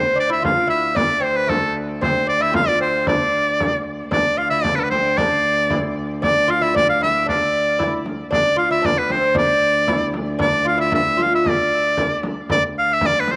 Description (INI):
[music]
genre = medieval dance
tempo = 114 BPM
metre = 2/4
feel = straight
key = D dorian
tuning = A4 = 440 Hz
[part]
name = edgy shawm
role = melody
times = 0.0-13.4 s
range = A4 to F5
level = -20 LUFS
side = equal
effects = tape echo
[part]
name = lute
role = second line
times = 0.0-12.2 s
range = A3 to G4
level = -26 LUFS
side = equal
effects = none
[part]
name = warm viola da gamba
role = drone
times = 0.0-13.4 s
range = D2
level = -30 LUFS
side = equal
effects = none
[part]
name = frame drum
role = percussion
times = 0.4-13.4 s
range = none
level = -28 LUFS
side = equal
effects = none
[sound]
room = wet spring reverb, RT60 1.8 s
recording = none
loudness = -19 LUFS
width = mono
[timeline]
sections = 0.0-4.1 A section; 4.1-12.5 B section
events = none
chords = none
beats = 0.43 | 0.96 1.49 | 2.01 2.54 | 3.07 3.59 | 4.12 4.64 | 5.17 5.69 | 6.22 6.74 | 7.26 7.79 | 8.31 8.84 | 9.36 9.88 | 10.40 10.93 | 11.45 11.97 | 12.49 13.01